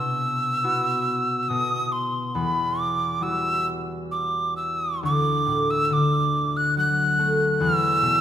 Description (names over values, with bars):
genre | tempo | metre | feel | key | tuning
celtic folk, Celtic slow air | 64-74 BPM | 3/4 | rubato | E minor | A4 = 440 Hz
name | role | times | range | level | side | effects
mid whistle | melody | 0.0-8.2 s | B5 to F#6 | -23 LUFS | right 1 dB | none
concert harp | accompaniment | 0.0-8.2 s | D2 to F#4 | -25 LUFS | left 2 dB | none
room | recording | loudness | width
moderate concert hall reverb, RT60 2.0 s | minimal, uncompressed stereo recording | -21 LUFS | side -10 dB against mid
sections
0.0-5.0 A section; 5.0-8.2 B section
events
none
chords
0.0 Bsus4; 1.5 N.C.; 2.4 Emadd9; 5.0 D; 7.6 E5